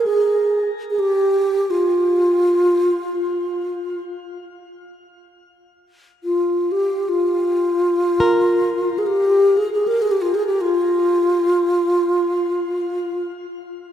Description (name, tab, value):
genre	world meditative, free-time meditation music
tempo	free time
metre	none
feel	none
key	unclear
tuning	A4 = 440 Hz
part	breathy mellow wooden-headed alto flute	melody	0.0-13.3 s	F4 to Bb4	-17 LUFS	equal	shimmer reverb, tape echo
part	flamenco guitar	texture	0.0-13.9 s	G4 to C5	-26 LUFS	right 1 dB	shimmer reverb
room	wet plate reverb, RT60 3.3 s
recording	none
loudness	-16 LUFS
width	side -10 dB against mid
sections	0.0-13.9 A section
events	none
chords	none